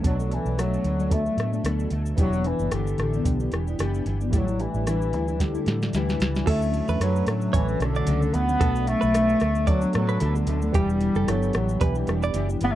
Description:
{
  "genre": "indie pop, bedroom pop",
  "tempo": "112 BPM",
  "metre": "4/4",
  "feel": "swing 55% on 16ths",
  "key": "D major",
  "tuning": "A4 = 440 Hz",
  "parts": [
    { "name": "fingerpicked steel-string acoustic guitar", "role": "accompaniment", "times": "0.0-12.8 s", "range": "A2 to G4", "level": "-31 LUFS", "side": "left 4 dB", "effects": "analog chorus, warbly pitch drift" },
    { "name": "warm analog keys", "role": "accompaniment", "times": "0.0-12.8 s", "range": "E3 to A4", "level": "-32 LUFS", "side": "right 6 dB", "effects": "chorus" },
    { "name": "vintage muted fingered electric bass", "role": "bass", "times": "0.0-12.8 s", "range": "E1 to A2", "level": "-26 LUFS", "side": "equal", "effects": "none" },
    { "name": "soft vintage rhythm box", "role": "drums", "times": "0.0-12.7 s", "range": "crash cymbal, hi-hat, kick drum, rim click, shaker, snare drum", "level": "-26 LUFS", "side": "equal", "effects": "overdrive" },
    { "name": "warm bass clarinet", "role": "melody", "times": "0.1-12.8 s", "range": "D3 to B3", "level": "-26 LUFS", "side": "left 1 dB", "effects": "analog chorus" },
    { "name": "direct-recorded clean electric guitar", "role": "second line", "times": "6.5-12.5 s", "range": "G4 to D5", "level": "-31 LUFS", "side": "right 6 dB", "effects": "wide subtle chorus, tape echo" }
  ],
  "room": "light reverb",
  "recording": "dry, close 1970s-style studio recording",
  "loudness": "-21 LUFS",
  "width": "side -13 dB against mid",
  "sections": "0.0-6.5 A section; 6.5-12.8 B section",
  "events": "drum fill 5.4-6.5",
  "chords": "0.0 Bm7; 2.2 Em7; 4.3 A7sus4; 6.5 Dmaj7; 8.6 Bm7; 10.7 Em7"
}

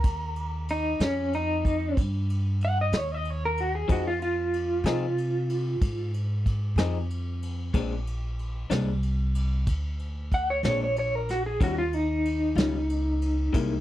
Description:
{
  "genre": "slow blues",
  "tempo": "62 BPM (dotted quarters)",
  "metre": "12/8",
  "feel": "straight",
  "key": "Eb mixolydian",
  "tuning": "A4 = 439 Hz",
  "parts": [
    { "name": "electric guitar through a small old amp", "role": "melody", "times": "0.0-13.8 s", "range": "Db4 to Gb5", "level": "-27 LUFS", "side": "equal", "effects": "tremolo" },
    { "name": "upright bass", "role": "bass", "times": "0.0-13.8 s", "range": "Bb1 to C3", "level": "-28 LUFS", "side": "equal", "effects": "none" },
    { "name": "vintage brush drum kit", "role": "drums", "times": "0.0-13.7 s", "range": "kick drum, ride cymbal, snare drum", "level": "-28 LUFS", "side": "equal", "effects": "none" },
    { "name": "electric guitar through a small old amp", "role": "accompaniment", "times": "3.9-13.7 s", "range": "Bb2 to Ab4", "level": "-30 LUFS", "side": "left 6 dB", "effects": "tremolo" }
  ],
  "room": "little or no reverb",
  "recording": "dry, close 1970s-style studio recording",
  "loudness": "-25 LUFS",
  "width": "side -14 dB against mid",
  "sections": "0.0-13.8 A section",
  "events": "clean electric guitar solo 0.0-13.8",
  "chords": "0.0 Ebadd9; 3.9 Fm7; 7.7 Bb9; 11.6 Eb9"
}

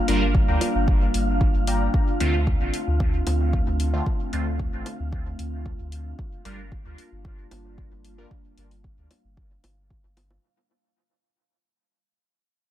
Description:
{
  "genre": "dub techno",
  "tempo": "113 BPM",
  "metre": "4/4",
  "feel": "straight",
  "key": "unclear",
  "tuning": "A4 = 440 Hz",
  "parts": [
    { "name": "dark analog pad", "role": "sustained chords", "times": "0.0-10.4 s", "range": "G3 to F4", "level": "-30 LUFS", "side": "left 1 dB", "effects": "chorus, phaser, sidechain pumping" },
    { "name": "wind-like tuned noise texture", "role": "texture", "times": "0.0-10.4 s", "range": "F5", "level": "-35 LUFS", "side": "right 3 dB", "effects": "built-in reverb, sidechain pumping" },
    { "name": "resonant sweep polysynth", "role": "stabs", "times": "0.1-8.3 s", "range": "D3 to Bb4", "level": "-30 LUFS", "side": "equal", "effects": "chorus, phaser, vintage 12-bit sampler grit, sidechain pumping, dub echo" },
    { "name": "soft dub sub bass", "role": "bass", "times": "0.1-10.4 s", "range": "G1 to D2", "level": "-25 LUFS", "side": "equal", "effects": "sidechain pumping" },
    { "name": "electronic hi-hat", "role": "drums", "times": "0.1-10.3 s", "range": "none", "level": "-34 LUFS", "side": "left 5 dB", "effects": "overdrive" },
    { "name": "electronic kick drum", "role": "drums", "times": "0.3-10.0 s", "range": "none", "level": "-24 LUFS", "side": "equal", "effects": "overdrive" },
    { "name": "warbly lo-fi synth keys", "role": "riff", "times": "0.5-1.8 s", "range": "D5 to Bb5", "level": "-34 LUFS", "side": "left 2 dB", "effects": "chorus, sidechain pumping, dub echo" },
    { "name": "bongos", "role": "percussion", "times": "0.6-10.4 s", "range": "none", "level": "-39 LUFS", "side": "right 1 dB", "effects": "none" }
  ],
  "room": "little or no reverb",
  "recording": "echo-heavy mix",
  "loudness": "-21 LUFS",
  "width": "side -12 dB against mid",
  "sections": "0.0-10.4 A section",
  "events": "fade-out 0.0-10.4; filter sweep on analog polysynth 0.0-10.4",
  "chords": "0.0 Gm7; 1.9 Dm7; 6.2 Gm7"
}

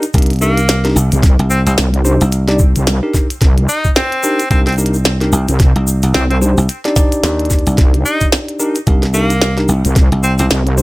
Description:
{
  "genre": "glitch hop",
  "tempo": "110 BPM",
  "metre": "4/4",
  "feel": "swing 59% on 16ths",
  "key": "C minor",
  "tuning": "A4 = 440 Hz",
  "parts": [
    { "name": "bell-like tine electric piano", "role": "stabs", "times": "0.0-10.8 s", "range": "D4 to D5", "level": "-19 LUFS", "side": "equal", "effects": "sidechain pumping, dub echo" },
    { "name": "glitchy drum kit", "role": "drums", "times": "0.0-10.8 s", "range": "hi-hat, snare drum", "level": "-17 LUFS", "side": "equal", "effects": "overdrive" },
    { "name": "egg shaker", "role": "percussion", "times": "0.0-10.8 s", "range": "none", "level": "-24 LUFS", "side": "left 1 dB", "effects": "none" },
    { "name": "dry thumbed slap bass", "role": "bass", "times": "0.1-10.5 s", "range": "C2 to Eb2", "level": "-14 LUFS", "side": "equal", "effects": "none" },
    { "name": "electronic kick drum", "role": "drums", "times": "0.1-10.1 s", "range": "none", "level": "-12 LUFS", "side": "equal", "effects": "none" },
    { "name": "edgy tenor saxophone", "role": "melody", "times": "0.4-10.5 s", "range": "Bb3 to Eb4", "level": "-20 LUFS", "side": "equal", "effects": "dub echo" },
    { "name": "wobble bass", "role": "bass", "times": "1.1-10.8 s", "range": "C2", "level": "-13 LUFS", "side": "equal", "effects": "chorus, overdrive" }
  ],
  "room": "little or no reverb",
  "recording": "none",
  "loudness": "-11 LUFS",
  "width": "side -20 dB against mid",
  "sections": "0.0-10.8 A section",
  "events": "none",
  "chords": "0.0 Cm7"
}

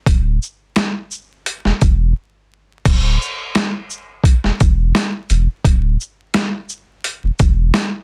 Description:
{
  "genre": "hip hop, boom-bap hip-hop",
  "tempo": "86 BPM",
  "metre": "4/4",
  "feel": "swing 54% on 16ths",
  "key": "unclear",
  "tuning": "A4 = 440 Hz",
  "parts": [
    { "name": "warm sub bass", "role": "bass", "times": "0.1-7.7 s", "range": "D1 to E1", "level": "-18 LUFS", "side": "equal", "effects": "none" },
    { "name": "boom bap sampler-style drum kit", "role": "drums", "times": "0.1-7.9 s", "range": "crash cymbal, hi-hat, kick drum, shaker, snare drum", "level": "-18 LUFS", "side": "equal", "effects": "overdrive" }
  ],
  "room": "little or no reverb",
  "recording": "dense, heavily limited modern master, vinyl crackle, faint mains hum",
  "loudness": "-18 LUFS",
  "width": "mono",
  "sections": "0.0-2.9 A section; 2.9-8.0 A section",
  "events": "break 2.2-2.9",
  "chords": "none"
}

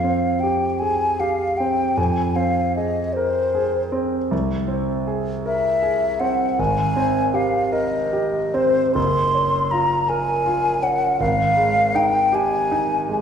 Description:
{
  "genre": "classical, impressionist duo for flute and grand piano",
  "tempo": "52 BPM (dotted quarters)",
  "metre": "6/8",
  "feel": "uneven beats, rubato",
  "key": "unclear",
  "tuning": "A4 = 442 Hz",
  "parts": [
    { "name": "mellow hollow silver concert flute", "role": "melody", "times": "0.0-13.2 s", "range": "C5 to C6", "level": "-20 LUFS", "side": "left 2 dB", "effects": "none" },
    { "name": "warm concert grand piano", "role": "accompaniment", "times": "0.0-13.2 s", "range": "Gb1 to Bb4", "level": "-22 LUFS", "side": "right 2 dB", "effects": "none" }
  ],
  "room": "wet recital hall reverb, RT60 1.5 s",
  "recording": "recorded in a church or concert hall",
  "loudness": "-18 LUFS",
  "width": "side -7 dB against mid",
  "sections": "0.0-13.2 A section",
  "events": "none",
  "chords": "0.0 Fmadd9; 2.0 Ab69/F; 4.3 Caug7; 6.6 Abmaj9; 9.0 Gbmaj7#11; 11.2 Ab5"
}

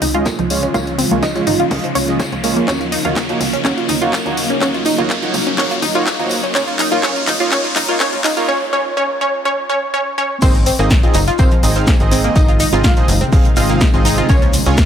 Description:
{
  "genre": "progressive house",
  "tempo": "124 BPM",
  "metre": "4/4",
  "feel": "straight",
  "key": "unclear",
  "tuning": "A4 = 440 Hz",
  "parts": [
    { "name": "wide unison pluck", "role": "melody", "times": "0.0-14.9 s", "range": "C4 to F5", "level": "-21 LUFS", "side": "equal", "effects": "dub echo" },
    { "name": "shimmering ambient pad", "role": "sustained chords", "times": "0.0-14.9 s", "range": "C3 to F4", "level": "-23 LUFS", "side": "equal", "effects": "chorus, built-in reverb, sidechain pumping" },
    { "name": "analog pluck", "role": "arpeggios", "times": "0.0-14.8 s", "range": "F3 to F4", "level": "-20 LUFS", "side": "equal", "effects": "chorus, phaser, sidechain pumping, dub echo" },
    { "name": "tight sequencer bass", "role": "bass", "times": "0.0-14.9 s", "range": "Gb1 to Eb2", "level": "-21 LUFS", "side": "equal", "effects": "sidechain pumping" },
    { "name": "damped 70s drum kit", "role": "drums", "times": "0.0-14.9 s", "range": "hi-hat, snare drum, tambourine", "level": "-30 LUFS", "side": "left 2 dB", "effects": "none" },
    { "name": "house drum kit", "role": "drums", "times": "0.0-14.9 s", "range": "crash cymbal, handclaps, hi-hat, snare drum", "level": "-22 LUFS", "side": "left 1 dB", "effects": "sidechain pumping on hats, sidechain pumping on cymbals" },
    { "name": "riser", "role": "sound effects", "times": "0.0-8.5 s", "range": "none", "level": "-24 LUFS", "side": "left 1 dB", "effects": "none" },
    { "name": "soft supersaw", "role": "stabs", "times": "0.1-14.8 s", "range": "Ab3 to F5", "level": "-22 LUFS", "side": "right 3 dB", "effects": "sidechain pumping, low-pass filter, dub echo" },
    { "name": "electronic kick drum", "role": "drums", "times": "0.3-14.9 s", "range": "none", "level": "-15 LUFS", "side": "equal", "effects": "high-pass filter on kick" },
    { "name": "shekere", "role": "percussion", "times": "10.4-14.9 s", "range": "none", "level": "-28 LUFS", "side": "equal", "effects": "none" }
  ],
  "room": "light reverb, studio reverb",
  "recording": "high-pass filter",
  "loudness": "-13 LUFS",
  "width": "side -9 dB against mid",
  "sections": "0.0-10.4 A section; 10.4-14.9 B section",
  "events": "build-up 0.0-10.4; riser 0.0-8.5; filter sweep on synth arpeggio sound 0.0-10.4; filter sweep on supersaw synth 0.0-10.4; filter sweep on synth pluck 0.0-10.4; drum fill 2.7-8.5; drop 10.4-14.9",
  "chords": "0.0 Db; 2.7 Ebm7; 6.6 Bbm7; 10.4 Ab; 14.3 Db"
}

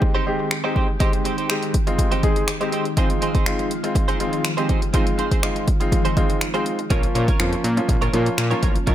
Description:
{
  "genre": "dance-pop",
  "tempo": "122 BPM",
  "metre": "4/4",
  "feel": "straight",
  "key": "unclear",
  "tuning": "A4 = 439 Hz",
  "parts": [
    { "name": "clear baby grand piano", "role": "accompaniment", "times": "0.0-8.9 s", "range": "F3 to Ab4", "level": "-25 LUFS", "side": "left 1 dB", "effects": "sidechain pumping" },
    { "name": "ensemble organ-string", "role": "sustained chords", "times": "0.0-8.9 s", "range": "Eb3 to G4", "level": "-28 LUFS", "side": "equal", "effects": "ensemble chorus, sidechain pumping" },
    { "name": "direct-recorded clean electric guitar", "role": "riff", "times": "0.0-8.9 s", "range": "C4 to Db5", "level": "-27 LUFS", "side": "right 4 dB", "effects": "analog chorus" },
    { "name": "deep house drum kit", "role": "drums", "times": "0.0-8.9 s", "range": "finger snaps, hi-hat, kick drum", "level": "-21 LUFS", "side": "equal", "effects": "none" },
    { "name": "fat analog bass", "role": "bass", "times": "6.9-8.9 s", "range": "A1 to Bb2", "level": "-22 LUFS", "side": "equal", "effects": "sidechain pumping" }
  ],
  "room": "little or no reverb",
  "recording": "none",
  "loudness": "-18 LUFS",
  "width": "side -12 dB against mid",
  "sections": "0.0-8.9 A section",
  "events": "none",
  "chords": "0.0 Abmaj7; 6.9 Bbm"
}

